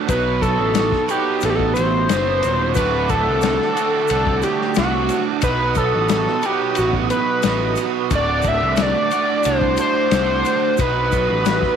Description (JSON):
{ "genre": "psychedelic rock", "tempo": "90 BPM", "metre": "4/4", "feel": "straight", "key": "unclear", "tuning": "A4 = 440 Hz", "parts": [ { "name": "cranked stack guitar", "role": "riff", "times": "0.0-11.8 s", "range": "D2 to B4", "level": "-22 LUFS", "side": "right 14 dB", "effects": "overdrive, flanger" }, { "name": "overdriven synth lead", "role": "melody", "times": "0.1-11.8 s", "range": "F#4 to E5", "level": "-20 LUFS", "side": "left 2 dB", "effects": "distortion, tape echo" }, { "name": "fuzz picked electric bass", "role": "bass", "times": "0.1-11.6 s", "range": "D1 to C2", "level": "-24 LUFS", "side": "left 1 dB", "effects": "overdrive" }, { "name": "vintage drum kit", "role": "drums", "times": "0.1-11.8 s", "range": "kick drum, ride cymbal, snare drum", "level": "-25 LUFS", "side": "left 6 dB", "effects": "none" }, { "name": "tube shaker", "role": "percussion", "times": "0.1-11.6 s", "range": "none", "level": "-38 LUFS", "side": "left 18 dB", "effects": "none" }, { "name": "combo organ", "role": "sustained chords", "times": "2.7-11.8 s", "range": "A4 to D#6", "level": "-30 LUFS", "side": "right 10 dB", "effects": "none" } ], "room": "light reverb, small room ambience", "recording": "1960s-style stereo with parts hard left and right", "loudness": "-16 LUFS", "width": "side -8 dB against mid", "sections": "0.0-11.8 A section", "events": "none", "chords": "0.1 B; 2.8 D; 5.4 B; 8.1 D; 10.8 B" }